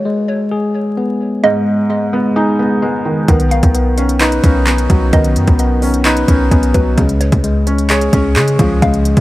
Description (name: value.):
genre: hip hop, trap.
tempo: 130 BPM.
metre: 4/4.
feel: half-time.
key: unclear.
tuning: A4 = 440 Hz.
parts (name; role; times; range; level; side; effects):
mallet-like synth pluck; second line; 0.0-9.2 s; B4 to F5; -21 LUFS; right 2 dB; chorus, phaser, tape echo.
tine electric piano; arpeggios; 0.0-9.2 s; Ab3 to B4; -17 LUFS; left 2 dB; low-pass filter, tape echo.
felt-muted upright piano; accompaniment; 1.4-9.2 s; Ab2 to Db5; -17 LUFS; right 1 dB; low-pass filter.
warm 808-style bass; bass; 3.3-9.2 s; B1 to Db3; -15 LUFS; equal; none.
trap drum kit; drums; 3.3-9.2 s; handclaps, hi-hat, kick drum; -15 LUFS; equal; none.
room: digital ambience.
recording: vinyl crackle.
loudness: -11 LUFS.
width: side -17 dB against mid.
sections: 0.0-9.2 A section.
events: break 0.0-1.4.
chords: 0.0 Abm; 3.3 Badd9; 7.0 Db.